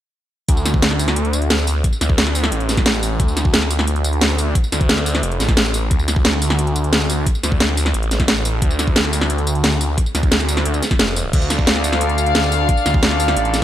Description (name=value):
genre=dark technical drum and bass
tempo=177 BPM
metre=4/4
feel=straight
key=D minor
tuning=A4 = 440 Hz
part: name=phased detuned saw bass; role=bass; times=0.5-13.6 s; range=F1 to D2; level=-19 LUFS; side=equal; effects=phaser, tube saturation, sidechain pumping
part: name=drum and bass drum kit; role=drums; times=0.5-13.6 s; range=crash cymbal, hi-hat, snare drum, tambourine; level=-18 LUFS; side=equal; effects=none
part: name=electronic kick drum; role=drums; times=0.5-13.0 s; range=none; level=-17 LUFS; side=equal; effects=none
part: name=rich chamber string section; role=sustained chords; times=11.3-13.6 s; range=D4 to F5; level=-20 LUFS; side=left 2 dB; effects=sidechain pumping
room=light reverb, digital ambience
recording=none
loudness=-15 LUFS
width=side -12 dB against mid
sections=0.5-13.6 A section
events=drop 0.5-13.6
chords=0.5 Dm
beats=| 0.48 0.82 1.16 1.50 | 1.84 2.18 2.52 2.86 | 3.20 3.54 3.88 4.21 | 4.55 4.89 5.23 5.57 | 5.91 6.25 6.59 6.93 | 7.26 7.60 7.94 8.28 | 8.62 8.96 9.30 9.64 | 9.98 10.32 10.65 10.99 | 11.33 11.67 12.01 12.35 | 12.69 13.03 13.37